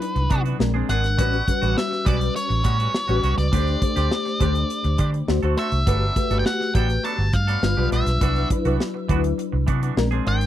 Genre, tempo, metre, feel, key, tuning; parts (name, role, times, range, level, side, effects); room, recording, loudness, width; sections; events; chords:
polished 1980s jazz-funk pop; 102 BPM; 4/4; straight; A4 = 443 Hz
octave-fuzz lead guitar; melody; 0.0-10.5 s; B4 to A5; -26 LUFS; left 1 dB; distortion
bell-like FM electric piano; accompaniment; 0.0-10.5 s; F#3 to C5; -26 LUFS; left 3 dB; ensemble chorus
twangy electric guitar; riff; 0.0-10.5 s; E3 to A4; -31 LUFS; right 10 dB; lush chorus
modern studio drum kit; drums; 0.0-10.5 s; hi-hat, kick drum, snare drum; -25 LUFS; equal
vintage muted fingered electric bass; bass; 0.2-10.5 s; G1 to D3; -22 LUFS; right 1 dB
little or no reverb; dry, close 1970s-style studio recording; -19 LUFS; side -12 dB against mid
0.0-10.5 A section
0.0 Cmaj9#11; 0.6 Bb9; 1.2 A13; 3.5 D7sus4; 5.3 D7; 5.9 Gmaj9; 7.6 G7; 8.2 Cmaj9#11